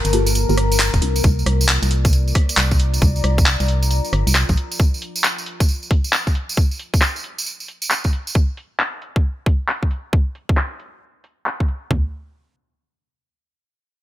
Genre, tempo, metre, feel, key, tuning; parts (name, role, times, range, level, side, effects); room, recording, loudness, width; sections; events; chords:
UK garage, two-step garage; 135 BPM; 4/4; swing 63% on 16ths; A4 = 441 Hz
organ-like FM bass; bass; 0.0-4.6 s; F1 to C2; -18 LUFS; equal
garage drum kit; drums; 0.0-11.8 s; handclaps, hi-hat, rim click; -20 LUFS; equal; overdrive, low-pass filter on snare, low-pass filter on hats, low-pass filter on cymbals
tambourine; percussion; 0.0-8.3 s; -26 LUFS; right 3 dB
deep dark ambient pad; texture; 0.0-4.8 s; F4 to Bb5; -26 LUFS; left 4 dB; chorus, built-in reverb, sidechain pumping
deep mellow chord stab; stabs; 0.1-1.2 s; Bb3 to Bb4; -25 LUFS; right 1 dB; chorus, ping-pong delay
garage drum kit; drums; 0.9-12.0 s; kick drum, toms; -17 LUFS; equal
little or no reverb; bright 1980s-style digital production; -17 LUFS; side -14 dB against mid
0.0-11.9 A section; 11.9-14.0 B section
filter sweep on drum 0.0-11.9; filter sweep on synth stab 0.0-1.2
0.0 Gm9; 1.0 C9sus4; 4.8 N.C.